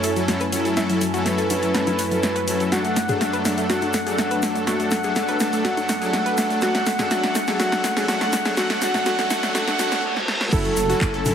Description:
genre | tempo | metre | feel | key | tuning
progressive house | 123 BPM | 4/4 | straight | unclear | A4 = 440 Hz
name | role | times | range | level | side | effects
expressive synth lead | melody | 0.0-11.3 s | A4 to F#5 | -25 LUFS | equal | wide subtle chorus, sidechain pumping, dub echo
airy breathy pad | sustained chords | 0.0-11.3 s | F#2 to G#5 | -30 LUFS | equal | chorus, sidechain pumping
analog pluck | arpeggios | 0.0-11.3 s | F#3 to B4 | -27 LUFS | equal | chorus, sidechain pumping, dub echo
soft supersaw | stabs | 0.0-11.3 s | F#3 to A4 | -26 LUFS | left 1 dB | sidechain pumping, dub echo
house drum kit | drums | 0.0-11.3 s | crash cymbal, handclaps, hi-hat, snare drum | -25 LUFS | right 1 dB | none
tube shaker | percussion | 0.0-11.3 s | none | -35 LUFS | left 3 dB | none
electronic congas and toms | percussion | 1.5-11.3 s | none | -31 LUFS | left 2 dB | overdrive, sidechain pumping on toms, sidechain pumping on perc
riser and reverse cymbal | sound effects | 6.0-10.5 s | none | -32 LUFS | right 1 dB | none
soft round pluck | second line | 10.5-11.3 s | A4 | -30 LUFS | right 2 dB | chorus, sidechain pumping
dark detuned saw bass | bass | 10.5-11.3 s | F#1 | -28 LUFS | right 1 dB | tube saturation, sidechain pumping
electronic kick drum | drums | 10.5-11.1 s | none | -23 LUFS | equal | none
room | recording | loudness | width
wet concert hall reverb, RT60 2.3 s | heavily compressed radio sound, high-pass filter | -19 LUFS | side -8 dB against mid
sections
0.0-10.5 A section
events
build-up 0.0-10.5; drum fill 0.0-10.0, 10.2-10.5; filter sweep on synth arpeggio sound 0.0-10.5; filter sweep 0.0-10.5; reverse cymbal 9.5-10.5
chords
0.0 F#m7; 2.7 D/F#; 10.5 F#m7

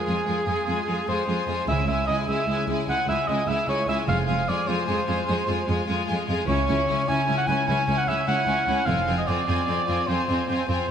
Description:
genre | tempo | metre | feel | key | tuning
cinematic | 100 BPM (dotted quarters) | 12/8 | straight | unclear | A4 = 440 Hz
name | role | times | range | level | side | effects
warm symphonic violin section | melody | 0.0-10.9 s | Ab5 | -33 LUFS | left 2 dB | none
mellow cor anglais | second line | 0.0-10.9 s | Ab4 to G#5 | -26 LUFS | right 1 dB | none
rich chamber violin section | second line | 0.0-10.9 s | E4 to F4 | -33 LUFS | left 4 dB | none
clear symphonic viola section | accompaniment | 0.0-10.9 s | Ab3 to C#4 | -30 LUFS | right 1 dB | none
concert harp | arpeggios | 0.0-10.9 s | C#3 to C5 | -32 LUFS | left 7 dB | none
rich symphonic cello section | bass | 0.1-10.8 s | C#2 to F2 | -29 LUFS | right 1 dB | none
clear symphonic double bass section | bass | 1.7-9.1 s | F1 to C#2 | -30 LUFS | right 2 dB | none
timpani | percussion | 1.7-2.2 s | C#3 | -36 LUFS | right 2 dB | none
room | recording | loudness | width
moderate scoring stage reverb, RT60 2.1 s | none | -22 LUFS | side -8 dB against mid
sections
0.0-10.9 A section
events
none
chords
0.0 Fm; 1.7 C#m; 4.1 Fm; 6.5 C#m; 8.9 Fm

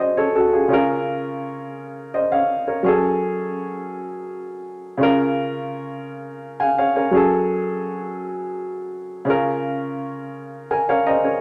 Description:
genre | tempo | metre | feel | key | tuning
R&B | 56 BPM (dotted quarters) | 6/8 | straight | Db major | A4 = 438 Hz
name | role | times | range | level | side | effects
dark baby grand piano | solo | 0.0-11.4 s | Db3 to Bb5 | -22 LUFS | equal | none
room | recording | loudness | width
wet studio reverb, RT60 0.6 s | none | -21 LUFS | mono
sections
0.0-11.4 A section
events
grand piano fill 10.3-11.4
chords
0.0 Gbmadd9; 0.7 Db6; 2.8 Gbmadd9; 5.0 Db6; 7.1 Gbmadd9; 9.3 Db6

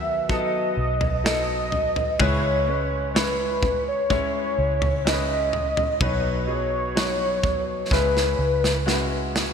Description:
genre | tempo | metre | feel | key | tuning
pop ballad | 63 BPM | 4/4 | straight | C# minor | A4 = 440 Hz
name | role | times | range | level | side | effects
warm velvety synth lead | melody | 0.0-9.3 s | B4 to E5 | -24 LUFS | equal | chorus, digital delay
bright concert grand piano | accompaniment | 0.0-9.5 s | B2 to C#5 | -28 LUFS | left 2 dB | wide subtle chorus
vintage muted fingered electric bass | bass | 0.0-9.5 s | B1 to C#2 | -28 LUFS | equal | none
modern studio drum kit | drums | 0.3-9.5 s | kick drum, snare drum, toms | -26 LUFS | equal | none
room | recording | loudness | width
moderate lush hall reverb, RT60 2.7 s | bright 1980s-style digital production | -20 LUFS | side -6 dB against mid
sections
0.0-9.5 A section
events
drum fill 7.9-9.5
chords
0.0 B; 2.2 C#m7; 6.0 B; 7.9 C#m7

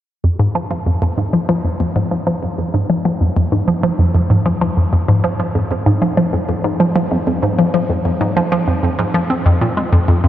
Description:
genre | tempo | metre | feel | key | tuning
ambient | 96 BPM | 4/4 | straight | F minor | A4 = 439 Hz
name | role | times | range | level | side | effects
hollow square pluck | solo | 0.2-10.3 s | F2 to C4 | -14 LUFS | equal | chorus, phaser, tape echo
room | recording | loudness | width
wet huge ambient reverb, RT60 7.6 s | worn, warbling old tape, cassette tape, warbly pitch drift | -14 LUFS | side -12 dB against mid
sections
0.2-10.3 A section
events
none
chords
none

